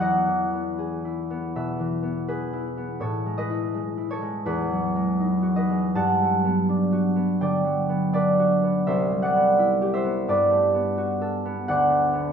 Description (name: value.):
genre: classical, solo harp piece.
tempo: 83 BPM.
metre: 4/4.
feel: uneven beats, rubato.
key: unclear.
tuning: A4 = 440 Hz.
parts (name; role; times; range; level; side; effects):
concert harp; solo; 0.0-12.3 s; C2 to A5; -21 LUFS; equal; none.
room: wet concert hall reverb, RT60 2.0 s.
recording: minimal, uncompressed stereo recording.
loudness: -21 LUFS.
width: side -7 dB against mid.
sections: 0.0-12.3 A section.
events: none.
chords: 0.0 Emaj7; 3.0 Amaj7; 4.5 Emaj9; 6.0 Gmaj7; 8.9 Cmaj7; 10.3 Gmaj9; 11.7 D6.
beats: 0.77 1.53 2.27 | 3.00 3.73 4.46 5.18 | 5.96 6.69 7.42 8.16 | 8.87 9.58 10.28 10.98 | 11.68.